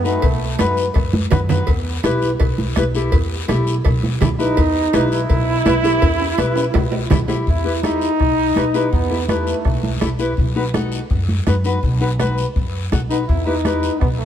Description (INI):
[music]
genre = latin, cumbia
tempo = 166 BPM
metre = 4/4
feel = straight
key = E harmonic minor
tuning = A4 = 441 Hz
[part]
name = bright trombone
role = second line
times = 0.0-0.8, 4.4-10.1, 13.1-14.2 s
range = A3 to E4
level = -21 LUFS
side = right 1 dB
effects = none
[part]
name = nylon-string guitar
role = accompaniment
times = 0.0-13.9 s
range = D#4 to B4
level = -22 LUFS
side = left 3 dB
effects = none
[part]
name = upright bass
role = bass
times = 0.0-14.2 s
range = B1 to F#2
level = -21 LUFS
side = equal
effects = none
[part]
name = guiro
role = percussion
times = 0.1-14.2 s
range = none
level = -33 LUFS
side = left 6 dB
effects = none
[part]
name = bombo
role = percussion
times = 0.2-14.2 s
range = none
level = -20 LUFS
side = left 1 dB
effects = none
[part]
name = cowbell and timbales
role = percussion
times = 0.2-7.4 s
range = none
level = -28 LUFS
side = right 3 dB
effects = none
[part]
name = congas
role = percussion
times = 0.6-13.8 s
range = none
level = -24 LUFS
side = right 2 dB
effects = none
[sound]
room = moderate plate reverb, RT60 3.4 s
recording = heard from further back in the room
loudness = -15 LUFS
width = side -10 dB against mid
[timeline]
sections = 0.0-7.5 A section; 7.5-14.2 B section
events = trombone solo 0.0-7.5, 7.5-14.2; drum fill 1.1-1.7, 6.0-7.5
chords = 0.0 B7; 1.7 Em; 10.4 B; 13.3 Em